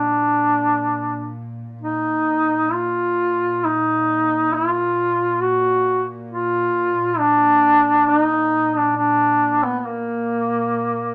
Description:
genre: caucasian folk, Caucasian lament.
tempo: 67 BPM.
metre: 3/4.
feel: rubato.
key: Bb major.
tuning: A4 = 440 Hz.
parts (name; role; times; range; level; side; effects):
warm duduk; melody; 0.0-11.1 s; Bb3 to Gb4; -19 LUFS; equal; none.
warm symphonic cello section; drone; 0.0-11.1 s; Bb2; -35 LUFS; equal; none.
room: light reverb.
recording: nothing above 10.4 kHz.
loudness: -19 LUFS.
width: mono.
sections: 0.0-11.1 A section.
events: none.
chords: none.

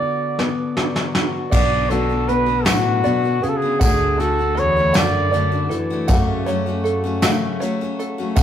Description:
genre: indie folk with a building arrangement.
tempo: 53 BPM (dotted quarters).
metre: 6/8.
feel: straight.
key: unclear.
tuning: A4 = 439 Hz.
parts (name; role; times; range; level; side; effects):
mellow trumpet; melody; 0.0-5.8 s; F#4 to D5; -21 LUFS; right 1 dB; tape echo.
fingerpicked plugged-in steel-string acoustic guitar; accompaniment; 0.0-6.1 s; A2 to F#4; -23 LUFS; left 3 dB; none.
soft brush drum kit; drums; 0.4-8.4 s; crash cymbal, hi-hat, kick drum, snare drum; -20 LUFS; equal; none.
picked steel-string acoustic guitar; accompaniment; 1.5-8.4 s; F#2 to F#4; -25 LUFS; left 4 dB; none.
open-back banjo; arpeggios; 1.5-8.4 s; D4 to F#5; -27 LUFS; right 3 dB; none.
upright bass; bass; 1.5-8.4 s; B1 to F#2; -25 LUFS; equal; none.
tambourine; percussion; 1.5-8.4 s; none; -34 LUFS; right 5 dB; none.
warm cello; second line; 4.6-5.8 s; E2 to F#2; -24 LUFS; right 1 dB; none.
hand-pumped harmonium; sustained chords; 6.1-8.4 s; C#3 to F#4; -29 LUFS; equal; none.
room: wet stone room reverb, RT60 0.9 s.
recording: rough rehearsal-room recording, warm saturation.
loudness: -16 LUFS.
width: side -9 dB against mid.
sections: 0.0-1.5 A section; 1.5-8.4 B section.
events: break 0.0-1.5; drum fill 0.4-1.5.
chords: 0.0 Bm/D; 1.5 Bm; 3.8 D; 6.1 F#m.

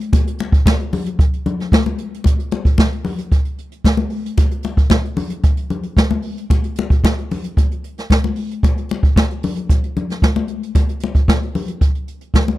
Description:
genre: disco.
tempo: 113 BPM.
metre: 4/4.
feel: straight.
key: none.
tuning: none.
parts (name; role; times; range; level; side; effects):
jazz brush drum kit; drums; 0.0-12.6 s; hi-hat, kick drum, snare drum; -14 LUFS; right 1 dB; none.
congas; percussion; 0.1-12.6 s; none; -22 LUFS; left 5 dB; none.
room: studio reverb.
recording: dry, close 1970s-style studio recording.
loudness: -15 LUFS.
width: side -16 dB against mid.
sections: 0.0-2.3 A section; 2.3-12.6 B section.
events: none.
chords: none.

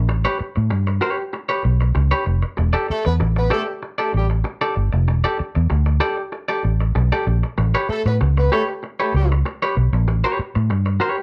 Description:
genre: funk.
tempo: 96 BPM.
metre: 4/4.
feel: straight.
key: unclear.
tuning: A4 = 439 Hz.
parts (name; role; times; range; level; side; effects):
vintage muted fingered electric bass; bass; 0.0-11.0 s; E1 to A2; -20 LUFS; equal; none.
semi-hollow electric guitar; accompaniment; 0.1-11.2 s; G4 to D5; -26 LUFS; equal; none.
clear horn section; second line; 2.9-9.3 s; G3 to B4; -26 LUFS; equal; none.
room: light reverb.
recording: none.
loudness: -20 LUFS.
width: mono.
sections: 0.0-11.2 A section.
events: none.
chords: 0.0 A9; 2.6 Em7; 7.6 A9.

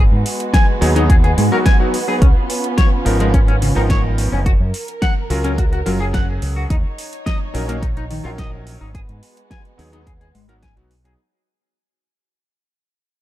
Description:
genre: nu-disco, nu disco.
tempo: 107 BPM.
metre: 4/4.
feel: straight.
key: unclear.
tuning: A4 = 440 Hz.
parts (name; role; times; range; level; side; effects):
muted symphonic violin section; sustained chords; 0.0-11.2 s; G#3 to C#5; -25 LUFS; right 2 dB; sidechain pumping.
semi-hollow electric guitar; riff; 0.0-11.1 s; C#3 to G#5; -24 LUFS; left 1 dB; lush chorus, tape echo.
fingered electric bass with an envelope filter; bass; 0.0-11.1 s; F#1 to G#2; -19 LUFS; equal; tube saturation.
pop drum kit; drums; 0.3-11.2 s; hi-hat, snare drum; -26 LUFS; equal; overdrive.
electronic kick drum; drums; 0.5-10.7 s; none; -15 LUFS; equal; none.
clear electric grand piano; accompaniment; 0.8-11.2 s; E#3 to A#4; -23 LUFS; equal; sidechain pumping, tape echo.
room: digital ambience.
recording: dark, warm production.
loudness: -14 LUFS.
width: side -14 dB against mid.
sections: 0.0-11.2 A section.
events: drop 0.0-11.2; fade-out 2.2-11.2.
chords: 0.0 G#m7; 2.2 C#13; 4.5 F#maj7; 6.7 D#m7; 8.9 G#m7.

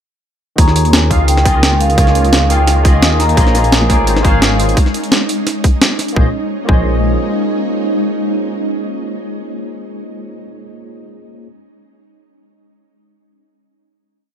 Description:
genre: liquid drum and bass.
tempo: 172 BPM.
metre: 4/4.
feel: straight.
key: Bb minor.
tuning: A4 = 440 Hz.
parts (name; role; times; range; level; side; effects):
vibraphone with medium mallets; melody; 0.6-4.4 s; F5 to Bb5; -18 LUFS; equal; ping-pong delay.
barky tine electric piano; accompaniment; 0.6-11.5 s; Eb3 to G5; -20 LUFS; equal; ensemble chorus, ping-pong delay.
dark detuned saw bass; bass; 0.6-7.2 s; Ab1 to Eb2; -14 LUFS; equal; none.
breakbeat sampler-style drum kit; drums; 0.6-6.1 s; hi-hat, snare drum; -16 LUFS; equal; none.
electronic kick drum; drums; 0.6-6.8 s; none; -12 LUFS; equal; overdrive.
ethereal airy pad; sustained chords; 4.1-9.7 s; Ab3 to Eb4; -20 LUFS; equal; ensemble chorus, built-in reverb.
bongos and congas; percussion; 3.5-4.5 s; none; -22 LUFS; left 2 dB; none.
room: light reverb.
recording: none.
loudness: -11 LUFS.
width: side -9 dB against mid.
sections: 0.6-6.2 drop; 6.2-9.0 final chord.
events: drop 0.6-6.2.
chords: 0.6 Eb7sus4; 3.4 Bbm11.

